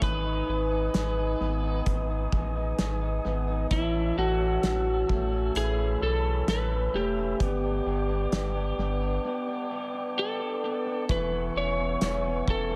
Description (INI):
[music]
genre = dream pop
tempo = 65 BPM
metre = 4/4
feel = straight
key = unclear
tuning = A4 = 445 Hz
[part]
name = electric slide guitar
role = melody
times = 0.0-12.8 s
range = E4 to C#5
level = -32 LUFS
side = equal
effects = analog delay
[part]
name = mellow tonewheel organ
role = sustained chords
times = 0.0-12.8 s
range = B4 to E6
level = -38 LUFS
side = equal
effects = fast rotary speaker
[part]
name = electric guitar through a small old amp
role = arpeggios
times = 0.0-12.8 s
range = D#3 to A4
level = -36 LUFS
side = equal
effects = analog chorus, analog delay
[part]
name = saturated sub bass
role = bass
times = 0.0-12.8 s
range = E1 to B1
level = -32 LUFS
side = equal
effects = none
[part]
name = loose indie drum kit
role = drums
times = 0.0-12.7 s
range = hi-hat, kick drum, snare drum, tambourine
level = -33 LUFS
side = equal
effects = analog delay
[sound]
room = light reverb, small room ambience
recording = echo-heavy mix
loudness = -28 LUFS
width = mono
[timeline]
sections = 0.0-11.1 A section; 11.1-12.8 B section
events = break 9.2-11.1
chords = 0.0 G#m; 3.7 A; 7.4 G; 11.1 E6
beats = | 0.02 0.94 1.86 2.79 | 3.71 4.63 5.55 6.48 | 7.40 8.32 9.25 10.17 | 11.09 12.02